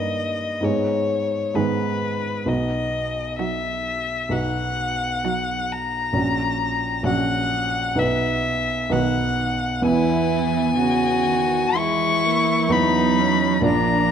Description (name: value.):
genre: classical, slow romantic movement for piano quintet.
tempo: 65 BPM.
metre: 4/4.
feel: rubato.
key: unclear.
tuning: A4 = 440 Hz.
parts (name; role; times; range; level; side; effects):
rich violin; melody; 0.0-14.1 s; B4 to C#6; -23 LUFS; left 4 dB; none.
rich cello; second line; 0.0-14.1 s; C#3 to F#3; -27 LUFS; right 12 dB; none.
warm violin; second line; 0.0-14.1 s; D4 to A#4; -25 LUFS; left 3 dB; none.
warm baby grand piano; accompaniment; 0.0-14.1 s; A#1 to D5; -24 LUFS; right 2 dB; none.
warm viola; accompaniment; 0.0-14.1 s; G#3 to D#4; -26 LUFS; right 3 dB; none.
room: moderate recital hall reverb, RT60 1.7 s.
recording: dark, warm production.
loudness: -19 LUFS.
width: side -8 dB against mid.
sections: 0.0-14.1 A section.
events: none.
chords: 0.0 D#/G; 0.6 G#m; 2.5 B; 6.2 F#/A#; 8.0 B; 9.8 E.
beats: 0.65 1.57 | 2.49 3.40 4.32 5.25 | 6.16 7.06 7.98 8.92 | 9.85 10.77 11.76 12.71 | 13.64.